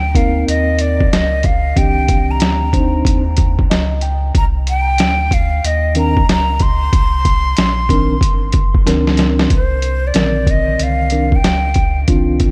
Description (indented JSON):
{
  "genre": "hip hop, jazz-hop",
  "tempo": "93 BPM",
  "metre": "4/4",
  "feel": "swing 65% on 16ths",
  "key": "C minor",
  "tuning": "A4 = 440 Hz",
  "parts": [
    { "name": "breathy mellow jazz flute", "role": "melody", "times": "0.0-12.0 s", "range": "C5 to C6", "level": "-22 LUFS", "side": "equal", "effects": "dub echo" },
    { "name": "warm sub bass", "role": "bass", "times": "0.0-12.5 s", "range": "G1 to Eb2", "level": "-20 LUFS", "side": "equal", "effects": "none" },
    { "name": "mellow tine electric piano", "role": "accompaniment", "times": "0.1-12.5 s", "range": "D3 to G5", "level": "-22 LUFS", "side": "equal", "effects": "dub echo" },
    { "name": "lo-fi sampler-style drum kit", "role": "drums", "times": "0.1-12.5 s", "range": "hi-hat, kick drum, snare drum", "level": "-18 LUFS", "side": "equal", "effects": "none" }
  ],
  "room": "little or no reverb",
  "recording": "echo-heavy mix",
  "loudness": "-15 LUFS",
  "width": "mono",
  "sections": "0.0-9.5 A section; 9.5-12.5 B section",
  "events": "tine electric piano fill 3.4-4.3; drum fill 8.9-9.5; flute solo 9.5-12.5",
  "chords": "0.0 Cm9"
}